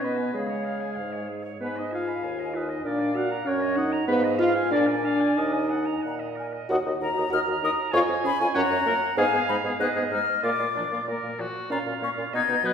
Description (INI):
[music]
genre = quick classical-period movement for wind quintet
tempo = 96 BPM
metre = 2/4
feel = rubato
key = Eb minor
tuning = A4 = 441 Hz
[part]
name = hollow concert flute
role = melody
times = 0.0-12.7 s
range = D#5 to G#6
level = -29 LUFS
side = left 6 dB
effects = none
[part]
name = warm oboe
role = second line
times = 0.0-12.7 s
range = B3 to Gb5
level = -32 LUFS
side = left 1 dB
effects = none
[part]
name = bright clarinet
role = accompaniment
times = 0.0-12.7 s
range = G#4 to Cb6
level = -32 LUFS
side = right 6 dB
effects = none
[part]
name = mellow French horn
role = accompaniment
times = 0.0-12.7 s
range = F3 to Gb4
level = -27 LUFS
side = equal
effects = none
[part]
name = mellow bassoon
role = bass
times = 0.0-12.7 s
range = Eb2 to C#3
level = -30 LUFS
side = right 2 dB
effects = none
[sound]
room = wet scoring stage reverb, RT60 1.6 s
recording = heard from further back in the room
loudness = -23 LUFS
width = side -7 dB against mid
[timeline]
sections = 0.0-6.7 A section; 6.7-12.7 B section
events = none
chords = 0.4 C#; 1.6 Abm; 2.9 Bb; 3.5 Ebm/Gb; 4.1 Fm7b5/Ab; 4.7 Bb7; 5.4 Ebm; 7.9 Db/F; 8.6 Gb; 9.2 Abm; 10.4 Bb; 11.7 A#m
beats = | 0.35 0.98 | 1.62 2.24 | 2.86 3.47 | 4.09 4.72 | 5.38 6.04 | 6.70 7.32 | 7.94 8.56 | 9.18 9.80 | 10.44 11.07 | 11.71 12.34